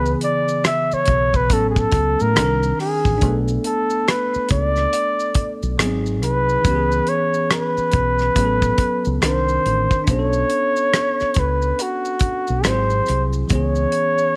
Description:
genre	R&B, neo-soul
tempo	70 BPM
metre	4/4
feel	swing 62% on 16ths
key	B dorian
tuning	A4 = 438 Hz
part	breathy flugelhorn	melody	0.0-14.4 s	F#4 to E5	-22 LUFS	equal	slapback echo
part	bell-like tine electric piano	accompaniment	0.0-14.4 s	C#3 to Bb4	-27 LUFS	equal	lush chorus
part	deep dub fingered electric bass	bass	0.0-13.9 s	G#1 to A2	-24 LUFS	equal	none
part	maracas and finger snaps	percussion	0.1-14.3 s	none	-36 LUFS	equal	none
part	damped 70s drum kit	drums	0.2-14.2 s	hi-hat, kick drum, rim click	-22 LUFS	equal	none
room	light reverb, small room ambience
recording	faint mains hum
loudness	-19 LUFS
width	mono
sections	0.0-10.1 A section; 10.1-14.4 B section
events	none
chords	0.0 C#m7; 1.5 A69; 2.4 Cm9; 3.2 Bm9; 5.8 G#7; 6.6 C#m7; 8.4 A69; 9.2 Cm9; 10.1 Bm9; 12.6 G#7b13; 13.5 C#m7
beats	0.65 1.50 2.36 | 3.22 4.07 4.93 5.79 | 6.64 7.50 8.36 9.22 | 10.07 10.93 11.79 12.64 | 13.50 14.36

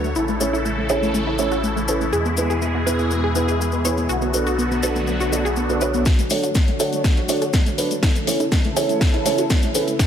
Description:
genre	progressive house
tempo	122 BPM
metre	4/4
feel	straight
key	A major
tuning	A4 = 440 Hz
part	filtered supersaw swell	sustained chords	0.0-10.1 s	B2 to C#5	-25 LUFS	left 1 dB	phaser, sidechain pumping, low-pass filter
part	wide unison pluck	arpeggios	0.0-10.1 s	A3 to C#5	-25 LUFS	left 1 dB	vintage 12-bit sampler grit, sidechain pumping, dub echo
part	felt-muted upright piano	stabs	0.0-9.9 s	B3 to D5	-24 LUFS	right 3 dB	sidechain pumping, low-pass filter, dub echo
part	dark detuned saw bass	bass	0.0-6.0 s	A1 to E2	-26 LUFS	equal	tube saturation, sidechain pumping
part	cabasa	percussion	0.0-10.1 s	none	-30 LUFS	left 6 dB	none
part	swell	sound effects	5.3-6.1 s	none	-34 LUFS	left 3 dB	none
part	electronic kick drum	drums	6.1-10.1 s	none	-18 LUFS	equal	small room reverb
part	house drum kit	drums	6.1-10.1 s	hi-hat, snare drum	-25 LUFS	equal	low-pass filter on snare, small room reverb, sidechain pumping on hats, low-pass filter on hats
room	light reverb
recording	none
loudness	-18 LUFS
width	side -9 dB against mid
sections	0.0-6.1 A section; 6.1-10.1 B section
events	filter sweep on synth pluck 0.0-6.1; swell 5.3-6.1; build-up 6.1-10.1; drum fill 6.1-10.1; filter sweep on felt piano 6.1-10.1; filter sweep on supersaw synth 6.1-10.1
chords	0.2 A; 2.1 E; 4.1 Bm7; 6.1 Dmaj7; 8.0 A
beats	| 0.16 0.65 1.14 1.63 | 2.13 2.62 3.11 3.60 | 4.09 4.58 5.08 5.57 | 6.06 6.55 7.04 7.54 | 8.03 8.52 9.01 9.50 | 9.99

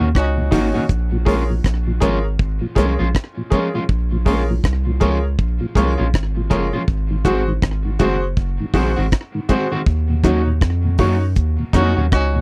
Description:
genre	roots reggae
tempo	80 BPM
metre	4/4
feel	swing 60% on 16ths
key	Bb minor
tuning	A4 = 440 Hz
part	electric guitar at the edge of break-up	accompaniment	0.0-12.1 s	Eb3 to Gb4	-26 LUFS	equal	dub echo
part	mellow tonewheel organ	accompaniment	0.0-12.4 s	Eb2 to Db4	-27 LUFS	equal	chorus vibrato, slow rotary speaker, slapback echo
part	soft dub sub bass	bass	0.0-12.4 s	Gb1 to Gb2	-22 LUFS	equal	none
part	warm horn section	second line	0.1-0.9, 11.7-12.4 s	Db4 to Gb4	-27 LUFS	equal	dub echo
part	deep reggae drum kit	drums	0.2-12.3 s	hi-hat, kick drum, rim click	-20 LUFS	equal	none
part	clear upright piano	stabs	0.5-12.0 s	Eb4 to Db5	-24 LUFS	equal	none
room	little or no reverb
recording	dry, close 1970s-style studio recording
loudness	-18 LUFS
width	mono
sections	0.0-12.4 A section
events	band accent 0.0-0.9, 9.9-12.4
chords	0.0 Ebm7; 0.9 Bbm7; 6.9 Ab7; 9.9 Ebm7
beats	0.14 | 0.89 1.64 2.39 3.14 | 3.88 4.63 5.38 6.13 | 6.88 7.63 8.38 9.12 | 9.87 10.62 11.37 12.12

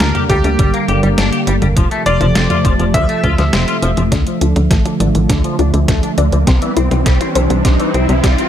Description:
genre	synthwave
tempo	102 BPM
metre	4/4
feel	straight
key	D minor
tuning	A4 = 438 Hz
part	bright electric grand piano	melody	0.0-4.0 s	G4 to E5	-20 LUFS	left 1 dB	ping-pong delay
part	chorused pulse-width pad	sustained chords	0.0-8.5 s	C3 to C4	-19 LUFS	right 1 dB	sidechain pumping
part	clean electric guitar	riff	0.0-8.5 s	C3 to G4	-22 LUFS	left 3 dB	ensemble chorus, low-pass filter, ping-pong delay
part	tight sequencer bass	bass	0.0-8.4 s	F1 to D2	-14 LUFS	equal	none
part	detuned 8-bit digital drum machine	drums	0.0-8.5 s	hi-hat, snare drum, toms	-21 LUFS	equal	overdrive, high-pass filter on hats, high-pass filter on snare, high-pass filter on toms
part	electronic kick drum	drums	0.3-8.4 s	none	-15 LUFS	equal	overdrive
part	analog pluck	arpeggios	4.1-8.4 s	C4 to D5	-22 LUFS	left 6 dB	chorus, ping-pong delay
part	riser	sound effects	5.5-8.5 s	none	-22 LUFS	right 1 dB	none
room	light reverb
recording	none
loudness	-11 LUFS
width	side -10 dB against mid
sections	0.0-4.1 A section; 4.1-8.5 B section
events	kick drops out 3.5-4.1; drum fill 4.1-8.5; filter sweep on synth arpeggio sound 4.1-8.5; filter sweep on clean electric guitar 4.1-8.5; riser 5.5-8.5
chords	0.0 Gm; 1.8 F; 4.1 Dm; 6.5 C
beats	0.00 0.59 1.18 | 1.77 2.35 2.94 3.53 | 4.12 4.71 5.30 5.88 | 6.47 7.06 7.65 8.24

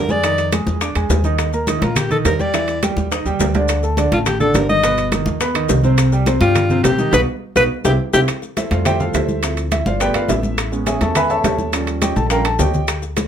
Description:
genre	Afro-Cuban jazz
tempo	209 BPM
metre	4/4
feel	straight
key	unclear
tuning	A4 = 440 Hz
part	warm alto saxophone	melody	0.0-8.2 s	E4 to Eb5	-17 LUFS	left 2 dB	none
part	warm concert grand piano	accompaniment	0.0-13.0 s	B2 to Eb6	-20 LUFS	right 2 dB	none
part	upright bass	bass	0.0-13.3 s	G1 to G2	-21 LUFS	equal	none
part	congas	percussion	0.1-13.3 s	none	-24 LUFS	equal	none
part	maracas	percussion	0.1-13.3 s	none	-30 LUFS	left 6 dB	none
part	bongos	percussion	0.2-13.3 s	none	-26 LUFS	left 8 dB	none
part	timbales	percussion	0.2-13.3 s	none	-25 LUFS	right 5 dB	none
room	moderate club reverb, RT60 0.6 s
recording	none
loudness	-15 LUFS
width	side -9 dB against mid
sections	0.0-8.3 A section; 8.3-13.3 B section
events	drum fill 3.1-3.7, 7.6-8.3, 12.2-12.9; band accent 7.1-8.3; grand piano solo 8.3-13.3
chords	0.2 Fm7; 0.8 E7; 1.4 Eb; 2.5 Em7; 3.1 Eb; 3.7 D5; 4.8 Gaug; 6.0 Cm; 7.1 B; 7.7 C; 8.3 Fmaj9; 9.4 Dm7; 10.0 G9; 10.6 Amaj9; 11.7 Eb9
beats	| 0.24 0.53 0.81 1.10 | 1.39 1.68 1.96 2.25 | 2.54 2.82 3.11 3.40 | 3.69 3.97 4.26 4.55 | 4.83 5.12 5.41 5.70 | 5.98 6.27 6.56 6.84 | 7.13 7.42 7.71 7.99 | 8.28 8.57 8.86 9.14 | 9.43 9.72 10.01 10.29 | 10.58 10.87 11.16 11.44 | 11.73 12.02 12.31 12.59 | 12.88 13.17

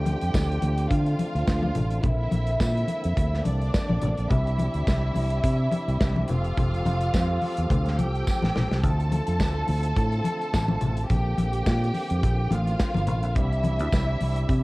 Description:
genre	disco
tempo	106 BPM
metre	4/4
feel	swing 56% on 16ths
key	D minor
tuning	A4 = 440 Hz
part	warm studio violin section	second line	0.0-14.6 s	D4 to A5	-30 LUFS	equal	cassette tape
part	tonewheel organ	sustained chords	0.0-14.6 s	C3 to A4	-34 LUFS	equal	overdrive, fast rotary speaker, cassette tape
part	fingered electric bass	bass	0.0-14.6 s	F1 to D3	-25 LUFS	equal	transformer saturation
part	modern studio drum kit	drums	0.1-14.6 s	hi-hat, kick drum, snare drum	-27 LUFS	equal	none
part	congas	percussion	0.1-14.4 s	none	-30 LUFS	left 2 dB	none
part	tambourine	percussion	0.3-14.1 s	none	-42 LUFS	right 3 dB	none
room	light reverb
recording	home recording on cassette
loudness	-22 LUFS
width	side -21 dB against mid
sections	0.0-14.6 A section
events	drum fill 8.3-8.8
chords	0.0 Dm7; 2.0 Bbadd9; 4.3 Cadd9; 6.3 F; 8.8 Dm7; 11.1 Bbadd9; 13.4 Cadd9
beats	0.34 0.91 1.48 | 2.04 2.61 3.17 3.74 | 4.30 4.87 5.44 6.00 | 6.57 7.14 7.70 8.27 | 8.84 9.40 9.97 10.53 | 11.10 11.66 12.23 12.79 | 13.36 13.93 14.49

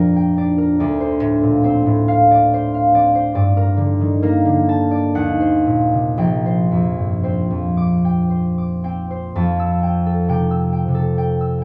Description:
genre	classical, solo harp piece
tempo	56-72 BPM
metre	3/4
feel	rubato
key	Bb major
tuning	A4 = 440 Hz
part	concert harp	solo	0.0-11.6 s	Bb1 to E6	-17 LUFS	equal	none
room	wet stone room reverb, RT60 1.0 s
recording	none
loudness	-17 LUFS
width	mono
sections	0.0-9.3 A section; 9.3-11.6 B section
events	none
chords	0.0 Bb6; 0.8 Dm7; 3.4 Gmadd9; 5.2 Ebm6; 6.2 Bb69; 9.3 Fmaj9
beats	| 0.77 1.64 2.51 | 3.35 4.22 5.16 | 6.19 7.26 8.31 | 9.34 10.27 11.17

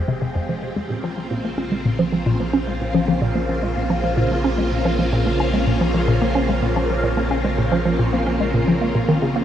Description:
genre	ambient, sequencer-driven space music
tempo	110 BPM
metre	4/4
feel	straight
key	unclear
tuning	A4 = 440 Hz
part	phased string machine	sustained chords	0.0-9.4 s	Db3 to G4	-22 LUFS	equal	ensemble chorus, phaser
part	hollow square pluck	riff	0.0-9.4 s	F2 to Db4	-20 LUFS	equal	chorus, phaser, analog delay
part	warm sub bass	bass	0.0-9.4 s	F1 to Bb1	-26 LUFS	equal	none
room	wet shimmer reverb, RT60 7.7 s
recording	none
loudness	-18 LUFS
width	side -10 dB against mid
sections	0.0-9.4 A section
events	fade-in on string machine 0.0-9.4; fade-in on sub bass 0.0-9.4; filter sweep on synth arpeggio sound 0.0-9.4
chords	0.0 Fmadd9; 0.8 Bbmadd9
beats	0.22 | 0.76 1.31 1.85 2.40 | 2.95 3.49 4.04 4.58 | 5.13 5.67 6.22 6.76 | 7.31 7.86 8.40 8.95

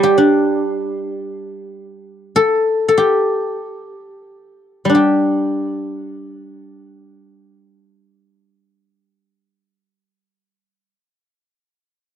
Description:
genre	chinese traditional, Chinese solo plucked strings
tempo	free time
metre	none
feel	none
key	unclear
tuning	A4 = 440 Hz
part	guzheng	solo	0.0-10.9 s	G3 to C6	-15 LUFS	left 1 dB	none
room	little or no reverb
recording	dry, close 1970s-style studio recording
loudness	-15 LUFS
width	side -10 dB against mid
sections	0.0-5.0 A section; 5.0-9.2 B section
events	slowing down 1.0-5.0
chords	none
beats	free time

